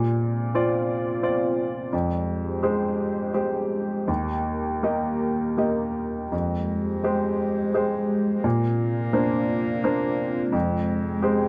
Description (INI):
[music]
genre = neoclassical piano and strings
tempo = 79-87 BPM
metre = 3/4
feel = rubato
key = F dorian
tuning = A4 = 438 Hz
[part]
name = clear grand piano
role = accompaniment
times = 0.0-11.5 s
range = Eb2 to Eb5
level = -26 LUFS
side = equal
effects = none
[part]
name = dark analog pad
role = sustained chords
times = 0.0-11.5 s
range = Ab3 to G5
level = -32 LUFS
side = equal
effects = chorus
[part]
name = warm cello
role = second line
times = 6.3-11.5 s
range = Ab3 to Bb3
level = -33 LUFS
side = equal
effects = none
[sound]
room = light reverb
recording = none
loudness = -25 LUFS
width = mono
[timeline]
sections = 0.0-6.3 A section; 6.3-11.5 A section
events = none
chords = 0.0 Bbadd9; 1.9 Fmadd9; 4.1 Eb; 6.3 Fmadd9; 8.4 Bbadd9; 10.5 Fmadd9